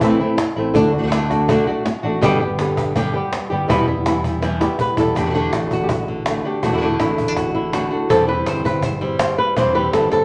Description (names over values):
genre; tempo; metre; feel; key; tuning
flamenco; 164 BPM; 4/4; straight; unclear; A4 = 440 Hz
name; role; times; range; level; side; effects
flamenco guitar; melody; 0.0-10.2 s; E2 to C5; -21 LUFS; equal; none
flamenco guitar; stabs; 0.0-10.2 s; B2 to G4; -26 LUFS; equal; none
fretless electric bass; bass; 0.0-10.2 s; E1 to D2; -28 LUFS; equal; none
cajon; percussion; 0.0-10.2 s; none; -28 LUFS; equal; none
room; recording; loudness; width
wet club reverb, RT60 0.8 s; nothing above 10.4 kHz; -19 LUFS; mono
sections
0.0-5.2 A section; 5.2-10.2 B section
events
drum fill 4.4-5.2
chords
0.0 Am; 0.7 D; 2.2 G; 3.7 Em; 5.2 D/E; 8.1 C/E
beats
0.01 0.38 | 0.75 1.12 1.49 1.85 | 2.22 2.59 2.96 3.33 | 3.69 4.06 4.43 4.80 | 5.16 5.53 5.90 6.26 | 6.63 7.00 7.36 7.73 | 8.10 8.46 8.83 9.20 | 9.56 9.93